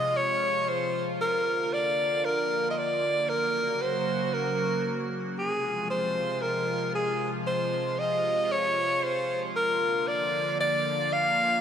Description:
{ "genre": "synthwave", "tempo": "free time", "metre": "none", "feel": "none", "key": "F phrygian", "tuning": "A4 = 439 Hz", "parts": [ { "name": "breathy alto saxophone", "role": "melody", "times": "0.0-11.6 s", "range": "Ab4 to F5", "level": "-26 LUFS", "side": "equal", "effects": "digital delay" }, { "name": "phased analog pad", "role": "sustained chords", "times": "0.0-11.6 s", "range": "C3 to Gb4", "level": "-32 LUFS", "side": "right 1 dB", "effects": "phaser, chorus" } ], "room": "wet lush hall reverb, RT60 2.3 s", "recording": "bright 1980s-style digital production", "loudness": "-25 LUFS", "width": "side -8 dB against mid", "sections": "0.0-11.6 A section", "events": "none", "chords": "0.0 Fm; 1.2 Bb; 3.3 Gb; 5.4 Fm; 9.6 Bb" }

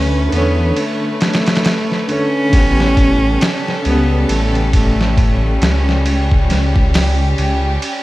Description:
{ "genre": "trip hop", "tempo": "68 BPM", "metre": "4/4", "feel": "swing 59% on 16ths", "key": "unclear", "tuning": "A4 = 440 Hz", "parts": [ { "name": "rich cello", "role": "melody", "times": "0.0-6.1 s", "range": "A3 to C#4", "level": "-20 LUFS", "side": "equal", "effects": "tape echo" }, { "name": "felt-muted upright piano", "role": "accompaniment", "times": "0.0-6.1 s", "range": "C#3 to C#4", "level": "-21 LUFS", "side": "equal", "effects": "tremolo, tape echo" }, { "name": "warm chamber violin section", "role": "sustained chords", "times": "0.0-8.0 s", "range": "G3 to B4", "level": "-23 LUFS", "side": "equal", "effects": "none" }, { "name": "dark detuned saw bass", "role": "bass", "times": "0.0-7.8 s", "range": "A1 to E2", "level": "-16 LUFS", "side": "equal", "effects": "none" }, { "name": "wind-like tuned noise texture", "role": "texture", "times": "0.0-6.1 s", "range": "C#5", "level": "-35 LUFS", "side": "right 3 dB", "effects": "none" }, { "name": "trip hop sampler-style drum kit", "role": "drums", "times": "0.3-8.0 s", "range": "hi-hat, kick drum, ride cymbal, snare drum", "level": "-17 LUFS", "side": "equal", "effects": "none" } ], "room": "little or no reverb", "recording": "none", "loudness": "-12 LUFS", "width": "side -17 dB against mid", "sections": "0.0-8.0 A section", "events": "none", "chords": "0.0 Bm7; 2.5 A7" }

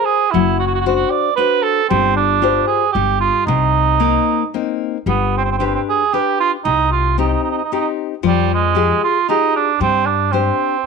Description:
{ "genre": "italian folk, Italian serenade", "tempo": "114 BPM", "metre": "3/4", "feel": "rubato", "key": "C minor", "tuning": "A4 = 439 Hz", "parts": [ { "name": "dark cor anglais", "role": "melody", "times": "0.0-10.9 s", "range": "G3 to D5", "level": "-16 LUFS", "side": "right 10 dB", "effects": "none" }, { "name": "nylon-string guitar", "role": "accompaniment", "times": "0.0-10.8 s", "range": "C3 to C5", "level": "-20 LUFS", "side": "left 14 dB", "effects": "none" }, { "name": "upright bass", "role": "bass", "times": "0.3-10.5 s", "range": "F#1 to G2", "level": "-20 LUFS", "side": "left 2 dB", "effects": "none" } ], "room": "light reverb, studio reverb", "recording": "1960s-style stereo with parts hard left and right", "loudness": "-14 LUFS", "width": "side -5 dB against mid", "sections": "0.0-10.9 A section", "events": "none", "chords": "0.3 D7/F#; 1.9 G7sus4; 2.9 Fsus2/G; 3.5 Cm7; 5.1 G; 6.7 Cm; 8.2 Fmadd9; 9.8 Gsus4" }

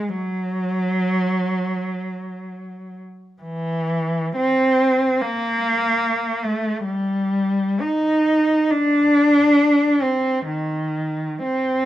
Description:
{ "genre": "classical, free, expressive piece for unaccompanied cello", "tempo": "free time", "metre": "none", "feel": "none", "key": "unclear", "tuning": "A4 = 440 Hz", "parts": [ { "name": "warm cello", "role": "solo", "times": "0.0-11.9 s", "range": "Eb3 to Eb4", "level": "-18 LUFS", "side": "equal", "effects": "none" } ], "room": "light reverb", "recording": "close, detailed microphones", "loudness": "-18 LUFS", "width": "side -14 dB against mid", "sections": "0.0-11.9 A section", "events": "none", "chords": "none" }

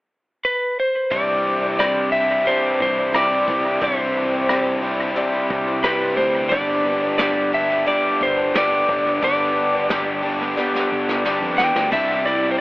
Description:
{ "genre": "folk rock and heartland rock", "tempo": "89 BPM", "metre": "4/4", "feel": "straight", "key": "C major", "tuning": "A4 = 440 Hz", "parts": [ { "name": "lightly driven lead guitar", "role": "melody", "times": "0.4-12.6 s", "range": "B4 to G5", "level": "-20 LUFS", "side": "equal", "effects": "tape echo" }, { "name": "picked twelve-string acoustic guitar", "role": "accompaniment", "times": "1.1-12.6 s", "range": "G2 to G4", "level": "-24 LUFS", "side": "left 1 dB", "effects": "tape echo" }, { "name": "biting overdriven guitar", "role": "riff", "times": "1.1-12.6 s", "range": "G2 to G4", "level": "-23 LUFS", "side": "equal", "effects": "tape echo" }, { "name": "fingered electric bass", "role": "bass", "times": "1.1-12.6 s", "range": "G1 to F2", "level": "-33 LUFS", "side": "equal", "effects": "none" }, { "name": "soft brush drum kit", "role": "drums", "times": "1.1-12.4 s", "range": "crash cymbal, hi-hat, kick drum, rim click, snare drum", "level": "-28 LUFS", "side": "equal", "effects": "tape echo" } ], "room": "light reverb, small room ambience", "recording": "echo-heavy mix, telephone sound", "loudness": "-17 LUFS", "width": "side -20 dB against mid", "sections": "0.0-1.1 A section; 1.1-11.9 B section", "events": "drum fill 10.6-11.9", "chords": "0.0 N.C.; 1.1 Cadd9; 6.5 G; 11.9 Cadd9" }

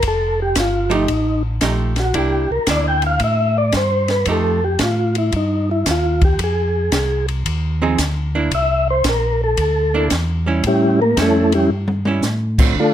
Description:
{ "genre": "soul jazz organ trio", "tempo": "113 BPM", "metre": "4/4", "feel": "swing 67% on 8ths", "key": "unclear", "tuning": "A4 = 440 Hz", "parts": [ { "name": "percussive tonewheel organ", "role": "melody", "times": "0.0-12.9 s", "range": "G3 to G5", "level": "-18 LUFS", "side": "equal", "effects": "slow rotary speaker" }, { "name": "mellow tonewheel organ", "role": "bass", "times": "0.0-12.9 s", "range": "F1 to D3", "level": "-20 LUFS", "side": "equal", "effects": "chorus vibrato, slow rotary speaker" }, { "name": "compact cocktail drum kit", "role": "drums", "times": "0.0-12.9 s", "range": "crash cymbal, hi-hat, kick drum, ride cymbal, snare drum, toms", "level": "-21 LUFS", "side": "equal", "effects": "none" }, { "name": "archtop guitar, miked and amplified", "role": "accompaniment", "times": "0.9-4.6, 7.8-12.7 s", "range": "D3 to Ab4", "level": "-21 LUFS", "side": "right 5 dB", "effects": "none" } ], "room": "light reverb", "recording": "close, detailed microphones", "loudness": "-15 LUFS", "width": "side -10 dB against mid", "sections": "0.0-12.9 A section", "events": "tonewheel organ solo 0.0-12.9; drum fill 11.7-12.2", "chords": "0.0 F9; 2.1 C9; 4.3 F9; 6.4 Fm7; 8.5 C9; 10.6 A7" }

